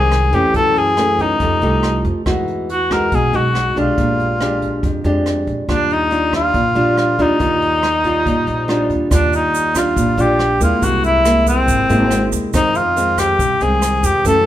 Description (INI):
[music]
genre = bossa nova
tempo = 140 BPM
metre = 4/4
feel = straight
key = Eb major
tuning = A4 = 440 Hz
[part]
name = warm cor anglais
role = melody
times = 0.0-14.5 s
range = C4 to Bb4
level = -16 LUFS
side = left 1 dB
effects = none
[part]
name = nylon-string guitar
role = accompaniment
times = 0.0-14.5 s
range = F2 to G4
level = -19 LUFS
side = equal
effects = none
[part]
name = upright bass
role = bass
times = 0.0-14.5 s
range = G#1 to Gb2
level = -21 LUFS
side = equal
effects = none
[part]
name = jazz brush drum kit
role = drums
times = 0.1-14.3 s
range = hi-hat, kick drum, rim click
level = -25 LUFS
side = right 1 dB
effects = none
[part]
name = egg shaker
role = percussion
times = 9.1-14.5 s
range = none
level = -29 LUFS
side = right 10 dB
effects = none
[sound]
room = moderate large studio reverb, RT60 1.5 s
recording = band playing live in one room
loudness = -13 LUFS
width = side -12 dB against mid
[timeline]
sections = 0.0-9.1 A section; 9.1-14.5 A section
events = none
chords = 0.0 Fm7; 0.5 Gbm7; 1.4 F9; 2.3 Emaj9; 4.0 Bb6; 5.7 Ebmaj9; 10.8 C7b13; 12.5 Fm7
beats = 0.12 | 0.55 0.97 1.40 1.83 | 2.26 2.69 3.12 3.54 | 3.97 4.40 4.83 5.26 | 5.68 6.11 6.54 6.97 | 7.40 7.83 8.26 8.68 | 9.11 9.54 9.97 10.40 | 10.82 11.25 11.68 12.11 | 12.54 12.97 13.39 13.82 | 14.25